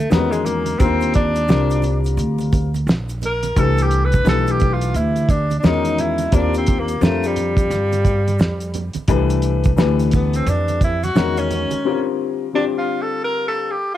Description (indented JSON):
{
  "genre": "hip hop, jazz-hop",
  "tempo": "87 BPM",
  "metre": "4/4",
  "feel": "swing 62% on 16ths",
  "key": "unclear",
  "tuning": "A4 = 445 Hz",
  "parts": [
    { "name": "breathy tenor saxophone", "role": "melody", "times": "0.0-14.0 s", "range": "G3 to B4", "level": "-22 LUFS", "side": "right 1 dB", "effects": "none" },
    { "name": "upright bass", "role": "bass", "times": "0.0-11.7 s", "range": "Bb1 to G2", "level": "-20 LUFS", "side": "right 1 dB", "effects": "tube saturation" },
    { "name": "dark upright piano", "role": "accompaniment", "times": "0.1-13.7 s", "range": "D3 to B4", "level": "-22 LUFS", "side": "left 9 dB", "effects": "none" },
    { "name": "cloth-damped thuddy drum kit", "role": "drums", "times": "0.1-11.8 s", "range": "hi-hat, kick drum, snare drum", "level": "-18 LUFS", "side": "right 1 dB", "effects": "none" },
    { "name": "egg shaker and congas", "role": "percussion", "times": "0.1-11.8 s", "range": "none", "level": "-33 LUFS", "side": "right 11 dB", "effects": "none" }
  ],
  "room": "light reverb, studio reverb",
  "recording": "home recording on cassette",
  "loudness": "-16 LUFS",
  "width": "side -12 dB against mid",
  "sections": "0.0-14.0 A section",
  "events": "tenor saxophone solo 0.0-14.0; break 11.8-14.0",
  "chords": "0.1 Emaj9; 0.8 Ebmaj9; 3.6 Cmaj9; 5.6 Emaj9; 6.3 Ebmaj9; 9.1 Cmaj9; 11.2 Emaj9; 11.8 Bbmaj13/D"
}